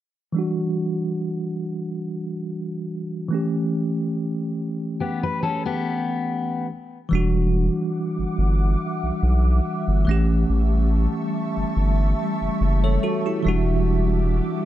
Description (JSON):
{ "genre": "R&B", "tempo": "71 BPM", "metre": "4/4", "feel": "swing 54% on 16ths", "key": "E dorian", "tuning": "A4 = 440 Hz", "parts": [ { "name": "bell-like tine electric piano", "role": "accompaniment", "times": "0.3-14.7 s", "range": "E3 to C#5", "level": "-24 LUFS", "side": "right 1 dB", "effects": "fast stereo tremolo" }, { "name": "fingerpicked steel-string acoustic guitar", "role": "arpeggios", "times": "5.0-6.7 s", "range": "B3 to B4", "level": "-25 LUFS", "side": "left 5 dB", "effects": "analog delay" }, { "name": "ethereal airy pad", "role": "sustained chords", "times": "7.9-14.7 s", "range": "G3 to D6", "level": "-28 LUFS", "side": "equal", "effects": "ensemble chorus, built-in reverb" }, { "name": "saturated sub bass", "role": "bass", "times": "7.1-14.4 s", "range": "E1 to B1", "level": "-20 LUFS", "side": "equal", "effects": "none" } ], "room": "light reverb", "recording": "echo-heavy mix, low-pass filter", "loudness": "-20 LUFS", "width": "side -13 dB against mid", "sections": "0.4-7.1 A section; 7.1-14.7 B section", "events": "filter sweep 0.4-7.1", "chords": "0.4 Em9; 3.3 A7; 6.7 N.C.; 7.1 Em9; 10.1 A7; 13.5 Em9" }